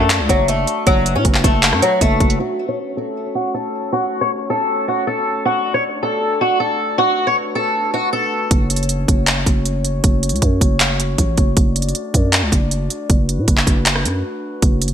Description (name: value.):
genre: hip hop, trap.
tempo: 157 BPM.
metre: 4/4.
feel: half-time.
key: F# minor.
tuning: A4 = 440 Hz.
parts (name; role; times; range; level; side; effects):
fingerpicked swing-style acoustic guitar; melody; 0.0-8.5 s; F#3 to C#5; -17 LUFS; left 1 dB; analog chorus, low-pass filter.
glass harmonica; sustained chords; 0.1-14.9 s; A3 to D5; -26 LUFS; left 2 dB; stereo widening, low-pass filter.
growling 808-style bass; bass; 0.0-2.4, 8.5-14.9 s; F#1 to A2; -19 LUFS; equal; none.
trap drum kit; drums; 0.1-2.4, 8.5-14.9 s; handclaps, hi-hat, kick drum, rim click; -16 LUFS; equal; gated reverb.
room: light reverb, small room ambience.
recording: bright 1980s-style digital production.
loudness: -15 LUFS.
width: side -9 dB against mid.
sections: 0.0-2.4 A section; 2.4-8.5 B section; 8.5-14.9 C section.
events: filter sweep 2.4-8.5; break 14.2-14.6.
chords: 0.0 D; 0.9 Bm7/F#; 2.4 F#m; 5.5 D; 7.0 Bm7; 8.5 F#m; 11.6 D/F#; 13.1 Bm7/F#.